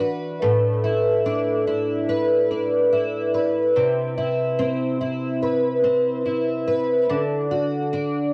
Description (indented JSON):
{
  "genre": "dream pop",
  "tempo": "72 BPM",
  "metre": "4/4",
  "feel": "straight",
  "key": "unclear",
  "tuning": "A4 = 437 Hz",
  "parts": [
    { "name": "fingerpicked twelve-string acoustic guitar", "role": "solo", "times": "0.0-8.3 s", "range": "A2 to B4", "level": "-22 LUFS", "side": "equal", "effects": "analog chorus, analog delay" }
  ],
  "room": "wet booth ambience, RT60 0.2 s",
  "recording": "home recording on cassette",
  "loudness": "-22 LUFS",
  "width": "mono",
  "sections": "0.0-8.3 A section",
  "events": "none",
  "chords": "0.4 Asus24; 3.8 Cmaj7; 7.1 D"
}